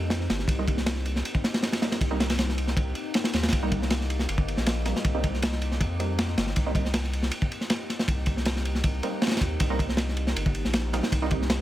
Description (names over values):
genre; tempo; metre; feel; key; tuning
drum and bass, jungle; 158 BPM; 4/4; straight; C minor; A4 = 440 Hz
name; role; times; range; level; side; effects
warbly tape-like pad; sustained chords; 0.0-11.6 s; Bb3 to G4; -36 LUFS; left 2 dB; chorus, built-in reverb, phaser
saturated sub bass; bass; 0.0-11.6 s; G1 to F2; -29 LUFS; equal; tube saturation
crunchy breakbeat drum kit; drums; 0.1-11.6 s; kick drum, ride cymbal, snare drum; -26 LUFS; equal; none
orchestra-hit-like synth stab; stabs; 0.6-6.7, 9.0-11.6 s; G3 to Eb4; -34 LUFS; right 3 dB; built-in reverb, dub echo
room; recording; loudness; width
little or no reverb; none; -24 LUFS; side -14 dB against mid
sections
0.0-11.6 A section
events
filter sweep on synth stab 0.0-11.6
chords
0.0 Cm7